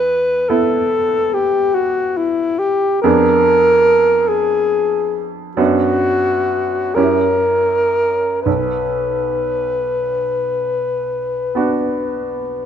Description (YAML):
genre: classical, romantic duo for alto saxophone and grand piano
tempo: 38-49 BPM (dotted quarters)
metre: 12/8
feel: rubato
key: B minor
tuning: A4 = 443 Hz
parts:
  - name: dark alto saxophone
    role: melody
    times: 0.0-12.7 s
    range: E4 to B4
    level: -15 LUFS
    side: left 1 dB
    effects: none
  - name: bright baby grand piano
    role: accompaniment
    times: 0.0-12.7 s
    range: B1 to Ab4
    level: -20 LUFS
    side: right 4 dB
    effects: none
room: light reverb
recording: close, detailed microphones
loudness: -14 LUFS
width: side -8 dB against mid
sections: 0.0-12.7 A section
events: none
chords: 0.0 Em; 3.0 Fdim7; 5.6 Bm/F#; 7.0 F#7b9; 8.5 Bm